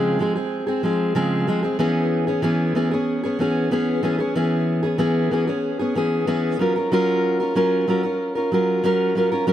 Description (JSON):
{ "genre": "pop", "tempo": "94 BPM", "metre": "4/4", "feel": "straight", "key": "unclear", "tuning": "A4 = 441 Hz", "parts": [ { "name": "fingerpicked steel-string acoustic guitar", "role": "solo", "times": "0.0-9.5 s", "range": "Db3 to Bb4", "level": "-19 LUFS", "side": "equal", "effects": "tape echo" } ], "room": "light reverb", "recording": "none", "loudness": "-19 LUFS", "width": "side -11 dB against mid", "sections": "0.0-9.5 A section", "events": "none", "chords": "0.0 Dbmaj7; 1.8 E6; 6.6 Gbmaj7" }